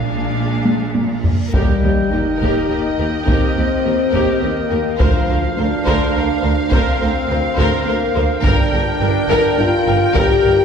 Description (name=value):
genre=cinematic, epic orchestral film score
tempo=105 BPM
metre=3/4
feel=straight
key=unclear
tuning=A4 = 440 Hz
part: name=warm symphonic violin section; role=melody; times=0.0-10.6 s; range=Eb5 to G5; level=-27 LUFS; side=left 2 dB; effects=none
part: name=warm symphonic violin section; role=second line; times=0.0-10.5 s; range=Ab4 to C5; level=-25 LUFS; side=left 3 dB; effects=none
part: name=clear symphonic viola section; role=accompaniment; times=0.0-10.5 s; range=D4 to Bb4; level=-25 LUFS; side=right 1 dB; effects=none
part: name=dark French horn section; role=sustained chords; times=0.0-10.6 s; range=F3 to G4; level=-19 LUFS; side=left 3 dB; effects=none
part: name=clear symphonic double bass section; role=bass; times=0.0-10.5 s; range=G1 to Eb2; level=-24 LUFS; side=right 3 dB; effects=none
part: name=rich symphonic cello section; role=bass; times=0.0-10.5 s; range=D2 to Bb2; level=-24 LUFS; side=right 2 dB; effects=none
part: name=reverse cymbal and sub drop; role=sound effects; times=1.4-3.3 s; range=none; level=-26 LUFS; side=equal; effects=none
part: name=taiko ensemble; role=drums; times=0.7-10.6 s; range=none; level=-20 LUFS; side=equal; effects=none
part: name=clear woodwind section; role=sustained chords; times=1.5-10.6 s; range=Bb3 to G5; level=-25 LUFS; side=right 1 dB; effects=none
part: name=clear tuba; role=bass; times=1.6-10.5 s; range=G1 to Eb2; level=-25 LUFS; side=right 3 dB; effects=none
room=wet scoring stage reverb, RT60 1.6 s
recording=heard from further back in the room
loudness=-14 LUFS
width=side -6 dB against mid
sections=0.0-1.5 A section; 1.5-10.6 B section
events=drum fill 0.7-1.5; reverse cymbal 1.4; impact 1.5-3.3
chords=0.0 Bb7; 1.5 Eb; 5.0 Bbadd9/D; 8.4 Gm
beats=0.37 0.95 | 1.54 2.13 2.70 | 3.27 3.85 4.42 | 5.00 5.58 6.15 | 6.72 7.29 7.86 | 8.44 9.01 9.58 | 10.15